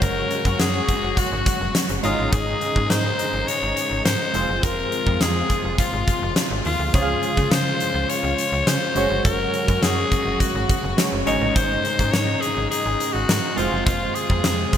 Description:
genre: 1980s-style pop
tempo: 104 BPM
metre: 4/4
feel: straight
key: unclear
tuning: A4 = 439 Hz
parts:
  - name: raspy alto saxophone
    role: melody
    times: 0.0-14.8 s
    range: F4 to Db5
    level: -24 LUFS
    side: left 2 dB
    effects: none
  - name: chorused retro synth keys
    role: accompaniment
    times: 0.0-14.8 s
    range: Ab2 to F5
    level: -27 LUFS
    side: right 2 dB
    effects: tremolo
  - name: rich studio string section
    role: sustained chords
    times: 0.0-14.8 s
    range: C3 to Gb4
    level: -29 LUFS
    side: left 2 dB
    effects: none
  - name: slap-like FM bass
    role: bass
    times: 0.0-14.7 s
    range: F1 to Db3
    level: -26 LUFS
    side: equal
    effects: none
  - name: huge arena drum kit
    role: drums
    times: 0.0-14.8 s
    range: hi-hat, kick drum, snare drum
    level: -23 LUFS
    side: equal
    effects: gated reverb
room: moderate lush hall reverb, RT60 2.6 s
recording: bright 1980s-style digital production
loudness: -18 LUFS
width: side -9 dB against mid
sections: 0.0-14.8 A section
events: none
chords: 0.0 Gbsus2; 2.0 Absus4; 4.3 Fm; 6.9 Db; 9.0 Gbsus2; 11.3 Absus4; 13.6 Fm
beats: | 0.02 0.59 1.17 1.75 | 2.33 2.90 3.48 4.06 | 4.63 5.21 5.79 6.36 | 6.94 7.52 8.10 8.67 | 9.25 9.83 10.40 10.98 | 11.56 12.13 12.71 13.29 | 13.86 14.44

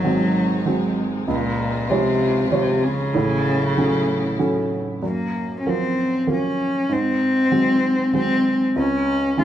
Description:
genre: acoustic folk-pop ballad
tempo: 96 BPM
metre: 3/4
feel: straight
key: unclear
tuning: A4 = 438 Hz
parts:
  - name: warm cello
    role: melody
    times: 0.0-9.4 s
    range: Bb2 to F4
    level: -20 LUFS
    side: left 1 dB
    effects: none
  - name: felt-muted upright piano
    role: accompaniment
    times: 0.0-9.4 s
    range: Ab1 to Db5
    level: -22 LUFS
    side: right 2 dB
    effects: none
  - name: rich chamber string section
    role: sustained chords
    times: 0.0-5.0 s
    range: C3 to F4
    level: -31 LUFS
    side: left 2 dB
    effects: none
room: moderate studio reverb, RT60 0.6 s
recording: band playing live in one room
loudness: -18 LUFS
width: side -11 dB against mid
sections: 0.0-5.0 A section; 5.0-9.4 A section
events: none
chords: 0.0 Ab7; 1.3 Db; 3.1 A6; 5.0 Gbmaj7; 6.9 Ab7; 8.8 N.C.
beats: 0.04 0.66 | 1.28 1.90 2.52 | 3.15 3.77 4.40 | 5.03 5.65 6.28 | 6.90 7.52 8.14 | 8.76 9.38

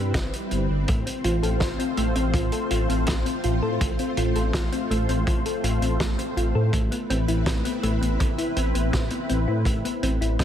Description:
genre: synthwave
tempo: 82 BPM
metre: 4/4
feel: straight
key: unclear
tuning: A4 = 439 Hz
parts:
  - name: analog string pad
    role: sustained chords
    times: 0.0-10.4 s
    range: G3 to C5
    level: -28 LUFS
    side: equal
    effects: ensemble chorus, sidechain pumping
  - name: dark detuned saw bass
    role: bass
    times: 0.0-10.4 s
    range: G1 to A2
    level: -25 LUFS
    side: equal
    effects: none
  - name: kick drum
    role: drums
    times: 0.1-10.4 s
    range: none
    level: -27 LUFS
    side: equal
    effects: none
  - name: loose indie drum kit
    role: drums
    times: 0.1-10.4 s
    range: hi-hat, snare drum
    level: -32 LUFS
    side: equal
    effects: none
  - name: thumb-piano-like synth pluck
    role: arpeggios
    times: 0.9-10.4 s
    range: A3 to A4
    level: -29 LUFS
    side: left 2 dB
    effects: chorus, tape echo
room: light reverb, small room reverb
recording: none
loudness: -22 LUFS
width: side -10 dB against mid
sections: 0.0-10.4 A section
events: none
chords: 0.0 Cmaj7/G; 0.9 F/A; 6.7 Amadd9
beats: 0.15 | 0.88 1.61 2.34 3.08 | 3.81 4.54 5.27 6.00 | 6.73 7.47 8.20 8.93 | 9.66 10.39

